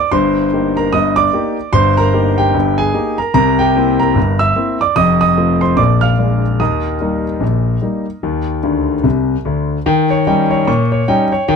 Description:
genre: ragtime piano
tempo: 74 BPM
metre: 2/4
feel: swing 60% on 16ths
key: Eb major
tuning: A4 = 440 Hz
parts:
  - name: clear grand piano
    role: solo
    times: 0.0-11.6 s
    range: F1 to F6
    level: -12 LUFS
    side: equal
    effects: none
room: light reverb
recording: close, detailed microphones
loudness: -12 LUFS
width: side -6 dB against mid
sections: 0.0-9.9 A section; 9.9-11.6 B section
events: grand piano fill 8.6-9.9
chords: 0.1 Eb/G; 3.4 C7; 5.0 F7; 5.8 Bb7; 6.6 Eb; 9.9 Eb7

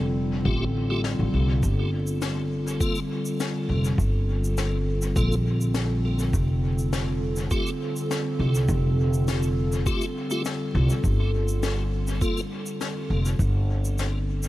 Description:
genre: ambient dub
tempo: 102 BPM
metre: 4/4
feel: straight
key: unclear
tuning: A4 = 438 Hz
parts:
  - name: warbly tape-like pad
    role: sustained chords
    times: 0.0-14.5 s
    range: D3 to A4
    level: -28 LUFS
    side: equal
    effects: chorus, built-in reverb
  - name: upright bass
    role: bass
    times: 0.0-14.5 s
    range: F1 to C2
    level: -24 LUFS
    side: equal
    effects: none
  - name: tonewheel organ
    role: stabs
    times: 0.5-12.4 s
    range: A3 to A4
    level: -34 LUFS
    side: left 1 dB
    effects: overdrive, chorus vibrato, slow rotary speaker, dub echo
  - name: electronic kick drum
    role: drums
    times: 0.5-13.5 s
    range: none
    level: -27 LUFS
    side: equal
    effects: none
  - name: snare drum and shaker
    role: drums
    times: 1.0-14.5 s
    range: none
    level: -36 LUFS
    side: left 4 dB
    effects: dub echo
room: light reverb, small room ambience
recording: vinyl crackle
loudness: -22 LUFS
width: side -16 dB against mid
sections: 0.0-14.5 A section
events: none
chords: 0.0 Fadd9; 1.6 Gm7; 6.3 Fadd9; 11.0 G7(no3)

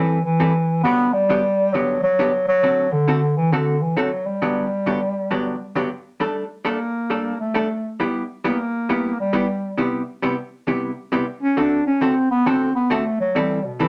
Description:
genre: country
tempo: 134 BPM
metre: 4/4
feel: swing 67% on 8ths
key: G major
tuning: A4 = 440 Hz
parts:
  - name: mellow bass clarinet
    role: melody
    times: 0.0-13.9 s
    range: B2 to D4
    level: -22 LUFS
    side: equal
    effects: none
  - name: vintage hollow-body jazz guitar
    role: accompaniment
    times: 0.0-13.9 s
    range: G2 to A4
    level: -25 LUFS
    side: equal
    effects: none
room: wet club reverb, RT60 0.6 s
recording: none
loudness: -21 LUFS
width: mono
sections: 0.0-6.2 A section; 6.2-13.9 B section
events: bass clarinet solo 6.2-13.9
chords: 0.0 Am7; 0.8 Gmaj7; 2.6 D7; 4.4 Gmaj7; 6.2 Gsus2; 8.0 Em/G; 9.8 Cmaj7; 11.6 D7; 13.4 Am7

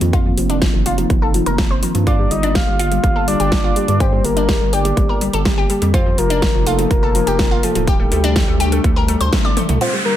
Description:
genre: progressive house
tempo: 124 BPM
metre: 4/4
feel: straight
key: G minor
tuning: A4 = 444 Hz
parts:
  - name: airy breathy pad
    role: sustained chords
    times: 0.0-10.2 s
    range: C3 to G4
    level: -23 LUFS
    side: equal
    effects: chorus, sidechain pumping
  - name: analog pluck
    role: arpeggios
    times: 0.0-10.1 s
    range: F3 to D5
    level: -21 LUFS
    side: left 2 dB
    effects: chorus, sidechain pumping, ping-pong delay
  - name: round analog bass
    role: bass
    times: 0.0-9.8 s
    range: D1 to G2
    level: -20 LUFS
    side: equal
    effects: sidechain pumping
  - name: big-room dance drum kit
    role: drums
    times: 0.0-9.9 s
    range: hi-hat, snare drum, toms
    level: -23 LUFS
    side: equal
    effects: none
  - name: electronic kick drum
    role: drums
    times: 0.1-9.4 s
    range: none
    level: -17 LUFS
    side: equal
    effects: none
  - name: soft octave-layered synth lead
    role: melody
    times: 2.1-10.2 s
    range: G4 to F5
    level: -21 LUFS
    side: left 1 dB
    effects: chorus, sidechain pumping, dub echo
  - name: downlifter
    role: sound effects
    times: 9.8-10.2 s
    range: none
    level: -20 LUFS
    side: right 1 dB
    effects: none
room: light reverb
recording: none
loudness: -14 LUFS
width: side -11 dB against mid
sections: 0.0-9.8 A section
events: filter sweep on synth pluck 0.0-9.8; filter sweep on analog synth pad 0.0-9.8; band accent 9.3; drum fill 9.4-9.8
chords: 0.0 F7sus4; 2.1 Gm7; 5.9 F7sus4; 7.9 D7sus4

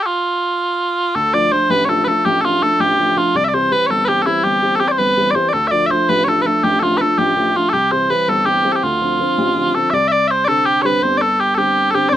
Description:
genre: celtic folk, Celtic jig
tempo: 109 BPM (dotted quarters)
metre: 6/8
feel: straight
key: unclear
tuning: A4 = 443 Hz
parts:
  - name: mellow small bagpipes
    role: melody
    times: 0.0-12.2 s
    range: E4 to E5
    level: -14 LUFS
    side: equal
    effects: none
  - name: dark upright piano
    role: accompaniment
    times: 1.1-12.2 s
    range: G1 to D4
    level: -20 LUFS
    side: left 1 dB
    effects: none
room: light reverb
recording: minimal, uncompressed stereo recording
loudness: -13 LUFS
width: side -12 dB against mid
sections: 0.0-1.1 A section; 1.1-9.9 A section; 9.9-12.2 B section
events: none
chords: 0.0 N.C.; 1.1 Dm; 3.3 C; 5.5 Dm; 7.7 C; 8.8 Dm7; 9.9 Csus2

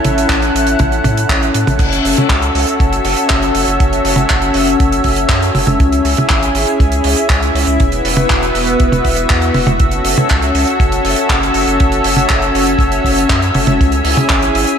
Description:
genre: italo disco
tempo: 120 BPM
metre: 4/4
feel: straight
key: F# minor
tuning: A4 = 440 Hz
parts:
  - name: lush unison pad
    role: sustained chords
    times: 0.0-14.8 s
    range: B3 to F#5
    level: -14 LUFS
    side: left 1 dB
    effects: chorus
  - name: round analog bass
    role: bass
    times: 0.0-14.7 s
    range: E1 to A2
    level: -19 LUFS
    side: equal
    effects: none
  - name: damped 70s drum kit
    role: drums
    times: 0.0-14.8 s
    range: crash cymbal, handclaps, hi-hat, toms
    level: -17 LUFS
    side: right 2 dB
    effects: none
  - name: kick drum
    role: drums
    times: 0.3-14.4 s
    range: none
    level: -15 LUFS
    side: equal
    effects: none
room: wet lush hall reverb, RT60 1.6 s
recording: dreamy mix soaked in reverb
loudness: -11 LUFS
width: side -8 dB against mid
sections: 0.0-1.8 A section; 1.8-14.8 B section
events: none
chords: 0.0 A; 1.8 F#m7; 5.8 C#m; 7.8 Esus2; 9.8 F#m7; 13.8 C#m

